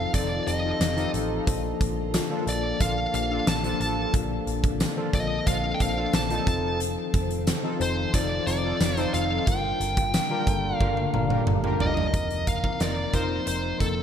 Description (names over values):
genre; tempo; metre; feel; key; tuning
1980s-style pop; 90 BPM; 4/4; straight; unclear; A4 = 438 Hz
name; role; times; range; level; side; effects
smooth overdriven lead guitar; melody; 0.0-14.0 s; A4 to A5; -29 LUFS; equal; ping-pong delay
bell-like tine electric piano; accompaniment; 0.0-14.0 s; D3 to C5; -31 LUFS; left 5 dB; fast stereo tremolo
soft string machine; sustained chords; 0.0-14.0 s; C3 to A4; -35 LUFS; equal; ensemble chorus
vintage muted picked electric bass; bass; 0.0-14.0 s; F1 to Bb1; -31 LUFS; right 1 dB; none
analog synth brass; stabs; 0.1-13.4 s; D4 to Bb4; -35 LUFS; right 2 dB; chorus
huge arena drum kit; drums; 0.1-14.0 s; hi-hat, kick drum, snare drum, tambourine, toms; -27 LUFS; equal; gated reverb
room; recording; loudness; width
moderate plate reverb, RT60 3.1 s; bright 1980s-style digital production; -23 LUFS; side -8 dB against mid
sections
0.0-12.1 A section; 12.1-14.0 B section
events
drum fill 10.8-12.1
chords
0.0 F7; 1.5 Bbmaj7; 6.5 F7; 9.5 Gm7; 12.1 F7sus4